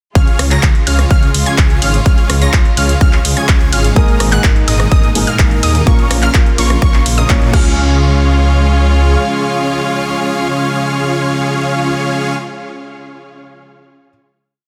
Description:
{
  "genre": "EDM, festival progressive house",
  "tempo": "126 BPM",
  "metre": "4/4",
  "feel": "straight",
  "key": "Db major",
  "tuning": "A4 = 440 Hz",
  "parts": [
    { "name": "warm chamber string section", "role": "sustained chords", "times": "0.2-12.3 s", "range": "Bb2 to F4", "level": "-24 LUFS", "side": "equal", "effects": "vintage 12-bit sampler grit, sidechain pumping" },
    { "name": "unison pluck", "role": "arpeggios", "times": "0.2-12.4 s", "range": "Db6 to Bb6", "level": "-24 LUFS", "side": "equal", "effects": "cassette tape, sidechain pumping, tape echo" },
    { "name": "dense compressed supersaw", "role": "riff", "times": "0.2-12.3 s", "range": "Bb3 to Bb5", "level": "-20 LUFS", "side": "equal", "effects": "sidechain pumping, tape echo" },
    { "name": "detuned saw bass", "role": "bass", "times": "0.2-9.2 s", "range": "Ab1 to Bb2", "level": "-16 LUFS", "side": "equal", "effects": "sidechain pumping" },
    { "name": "big-room dance drum kit", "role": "drums", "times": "0.2-7.6 s", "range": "crash cymbal, handclaps, hi-hat, ride cymbal, rim click", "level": "-22 LUFS", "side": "equal", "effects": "none" },
    { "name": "electronic kick drum", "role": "drums", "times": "0.2-7.6 s", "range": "none", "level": "-13 LUFS", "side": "equal", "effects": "none" },
    { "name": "dark baby grand piano", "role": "accompaniment", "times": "4.0-14.1 s", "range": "Ab2 to Db5", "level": "-23 LUFS", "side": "equal", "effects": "sidechain pumping, tape echo" }
  ],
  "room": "light reverb, digital ambience",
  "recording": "dense, heavily limited modern master",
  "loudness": "-12 LUFS",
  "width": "mono",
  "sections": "0.2-7.8 drop; 7.8-11.6 final hit",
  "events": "drop 0.2-7.8; band accent 7.3",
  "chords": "0.2 Db; 4.0 Absus2; 5.9 Bbm; 7.5 Db"
}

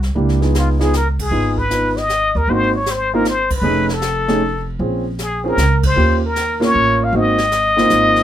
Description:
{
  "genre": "jazz, small-group swing and bop",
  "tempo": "155 BPM",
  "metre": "3/4",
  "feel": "swing 67% on 8ths",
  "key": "unclear",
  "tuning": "A4 = 439 Hz",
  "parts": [
    { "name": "upright bass", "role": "bass", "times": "0.0-8.2 s", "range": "F1 to Eb2", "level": "-20 LUFS", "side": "right 1 dB", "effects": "none" },
    { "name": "jazz brush drum kit", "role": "drums", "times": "0.0-8.2 s", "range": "brushed snare drum, hi-hat, kick drum, ride cymbal, snare drum", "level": "-26 LUFS", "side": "equal", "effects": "none" },
    { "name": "warm concert grand piano", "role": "accompaniment", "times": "0.2-8.2 s", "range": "A3 to Cb5", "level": "-18 LUFS", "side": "right 1 dB", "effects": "none" },
    { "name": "trumpet with plunger mute", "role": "melody", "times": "0.6-8.2 s", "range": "F4 to F5", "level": "-17 LUFS", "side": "left 2 dB", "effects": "none" }
  ],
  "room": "light reverb",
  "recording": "minimal, uncompressed stereo recording",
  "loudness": "-14 LUFS",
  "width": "side -11 dB against mid",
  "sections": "0.0-8.2 A section",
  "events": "band accent 1.1, 3.5, 5.8",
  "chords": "0.2 Db7; 2.5 Ab7; 3.6 F7alt; 4.8 Bbm7; 6.0 Eb7; 7.1 Ab7"
}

